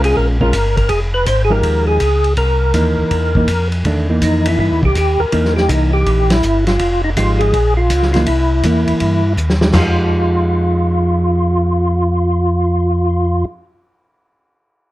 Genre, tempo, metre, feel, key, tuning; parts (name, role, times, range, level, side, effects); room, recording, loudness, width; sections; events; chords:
soul jazz organ trio; 163 BPM; 4/4; swing 65% on 8ths; A4 = 440 Hz
hollow-body jazz guitar; accompaniment; 0.0-13.6 s; D#3 to G4; -19 LUFS; right 2 dB
mellow tonewheel organ; bass; 0.0-13.4 s; F1 to G2; -16 LUFS; equal; slow rotary speaker
warm soul drum kit; drums; 0.0-9.9 s; crash cymbal, hi-hat, kick drum, ride cymbal, snare drum, toms; -21 LUFS; equal
percussive tonewheel organ; melody; 0.1-13.5 s; D#4 to C5; -17 LUFS; equal; slow rotary speaker, chorus vibrato
light reverb; dark, warm production; -12 LUFS; side -16 dB against mid
0.0-9.7 A section; 9.7-12.7 B section
band accent 6.2; drum fill 9.4-9.7
0.0 Bbm7; 0.9 Fm9; 2.4 C7#9; 6.8 Fm9; 7.5 Bbm; 8.3 C7#9; 9.7 Fm9